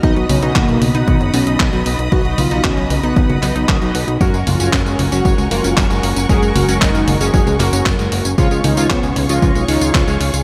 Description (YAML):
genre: italo disco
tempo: 115 BPM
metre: 4/4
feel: straight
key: F# major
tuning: A4 = 440 Hz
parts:
  - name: unison lead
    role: melody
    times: 0.0-9.9 s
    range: A#3 to G#4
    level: -23 LUFS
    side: equal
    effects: delay
  - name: warm symphonic string section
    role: sustained chords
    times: 0.0-10.4 s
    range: F#4 to D#6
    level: -28 LUFS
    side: equal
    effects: none
  - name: analog pluck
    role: arpeggios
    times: 0.0-10.4 s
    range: D#3 to E#4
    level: -26 LUFS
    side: equal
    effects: chorus, delay
  - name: chorused polysynth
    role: stabs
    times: 0.0-10.3 s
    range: F#3 to F#5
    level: -25 LUFS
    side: equal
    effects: phaser
  - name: fat analog bass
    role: bass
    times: 0.0-10.4 s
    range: F#1 to C#2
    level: -21 LUFS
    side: equal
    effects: tube saturation
  - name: detuned 8-bit digital drum machine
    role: drums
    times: 0.0-10.4 s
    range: congas, handclaps, hi-hat, tambourine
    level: -22 LUFS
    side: equal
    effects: gated reverb
  - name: electronic kick drum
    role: drums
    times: 0.0-10.1 s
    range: none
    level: -19 LUFS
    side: equal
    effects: none
room: light reverb, digital ambience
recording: none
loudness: -15 LUFS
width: mono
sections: 0.0-10.4 A section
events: none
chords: 0.0 B; 4.2 F#add9; 8.4 C#